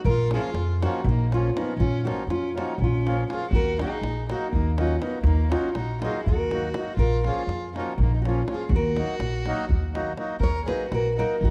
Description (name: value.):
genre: balkan folk, Balkan wedding band.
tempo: 243 BPM (eighths).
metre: 7/8.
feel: straight.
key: Eb minor.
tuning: A4 = 443 Hz.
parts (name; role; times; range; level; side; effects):
nylon-string guitar; melody; 0.0-11.5 s; Eb4 to Db5; -31 LUFS; equal; none.
upright bass; bass; 0.0-11.5 s; Bb1 to F2; -28 LUFS; equal; none.
davul; percussion; 0.0-11.5 s; none; -31 LUFS; equal; none.
rich violin; second line; 0.1-11.5 s; Bb3 to Bb4; -35 LUFS; equal; none.
accordion; accompaniment; 0.3-11.4 s; F3 to Gb4; -35 LUFS; equal; none.
room: light reverb.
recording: dark, warm production.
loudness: -25 LUFS.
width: mono.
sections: 0.0-10.4 A section; 10.4-11.5 B section.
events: none.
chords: 0.0 Bbm; 3.5 Ebm; 7.0 Bbm; 8.7 Ebm.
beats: | 0.05 0.30 0.54 0.79 1.04 1.29 1.54 | 1.79 2.04 2.28 2.53 2.78 3.03 3.28 | 3.52 3.77 4.02 4.27 4.51 4.76 5.01 | 5.26 5.50 5.75 6.00 6.24 6.49 6.74 | 6.98 7.23 7.48 7.72 7.97 8.21 8.46 | 8.71 8.95 9.20 9.45 9.69 9.94 10.18 | 10.43 10.67 10.92 11.16 11.41.